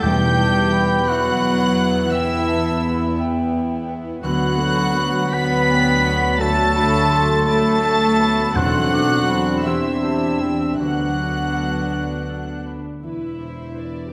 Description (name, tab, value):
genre	cinematic, emotional film score for orchestra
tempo	56 BPM (dotted quarters)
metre	6/8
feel	rubato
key	E minor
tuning	A4 = 441 Hz
part	warm studio violin section	melody	0.0-14.1 s	E5 to B6	-29 LUFS	equal	none
part	bright clarinet	second line	0.0-12.6 s	E4 to B4	-30 LUFS	equal	none
part	clear oboe	second line	0.0-12.6 s	E5 to B5	-28 LUFS	equal	none
part	mellow hollow silver concert flute	second line	0.0-12.5 s	F#5 to D6	-30 LUFS	equal	none
part	rich studio violin section	second line	0.0-14.1 s	B4 to B5	-31 LUFS	equal	none
part	rich studio viola section	accompaniment	0.0-14.1 s	F#3 to A4	-29 LUFS	equal	none
part	mellow French horn section	sustained chords	0.0-12.7 s	F#3 to E4	-26 LUFS	equal	none
part	concert harp	arpeggios	0.0-14.1 s	D3 to B5	-31 LUFS	equal	none
part	warm studio cello section	bass	0.0-14.1 s	E2 to B3	-27 LUFS	equal	none
part	warm studio double bass section	bass	0.0-14.1 s	E1 to E2	-30 LUFS	equal	none
part	timpani	percussion	0.0-1.0, 8.6-9.6 s	E2	-28 LUFS	equal	none
room	wet scoring stage reverb, RT60 1.8 s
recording	none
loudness	-19 LUFS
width	mono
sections	0.0-13.0 A section; 13.0-14.1 B section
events	none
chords	0.0 Emadd9; 4.2 Bm/D; 8.6 Cadd9/E; 10.8 D6; 13.0 E7(no3)